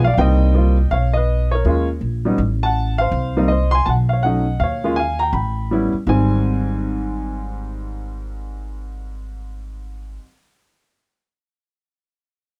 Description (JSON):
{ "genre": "jazz piano trio", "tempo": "163 BPM", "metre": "4/4", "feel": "swing 63% on 8ths", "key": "Ab major", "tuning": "A4 = 437 Hz", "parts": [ { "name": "warm baby grand piano", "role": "melody", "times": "0.0-10.2 s", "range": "Ab2 to C6", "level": "-22 LUFS", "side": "equal", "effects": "none" }, { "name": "upright bass", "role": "bass", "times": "0.0-10.2 s", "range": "Ab1 to Eb2", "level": "-22 LUFS", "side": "equal", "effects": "none" } ], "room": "little or no reverb", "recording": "close, detailed microphones", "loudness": "-18 LUFS", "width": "mono", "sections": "0.2-6.1 A section; 6.1-9.0 B section", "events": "none", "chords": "0.2 Cm7; 0.9 Badd9; 1.7 Eb9sus4; 2.4 A5; 3.1 Cm; 3.9 B9; 4.6 Eb9sus4; 5.3 A9; 6.1 Abmaj7" }